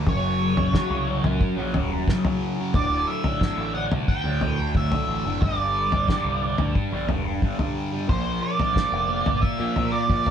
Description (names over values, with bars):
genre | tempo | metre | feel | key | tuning
psychedelic rock | 90 BPM | 4/4 | straight | unclear | A4 = 440 Hz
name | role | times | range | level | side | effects
thick fuzz guitar | riff | 0.0-10.3 s | D2 to Bb3 | -26 LUFS | equal | distortion, phaser
growling picked electric bass | bass | 0.0-10.3 s | D1 to Bb2 | -29 LUFS | equal | overdrive
octave-fuzz lead guitar | melody | 0.1-10.3 s | C5 to G5 | -26 LUFS | right 2 dB | distortion
cloth-damped thuddy drum kit | drums | 0.1-10.3 s | kick drum, snare drum, toms | -24 LUFS | equal | none
room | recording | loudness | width
moderate studio reverb, RT60 0.6 s | band playing live in one room | -21 LUFS | side -8 dB against mid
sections
0.0-10.3 A section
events
none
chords
0.1 F#5; 2.8 Dsus2; 5.4 G5; 8.1 Bb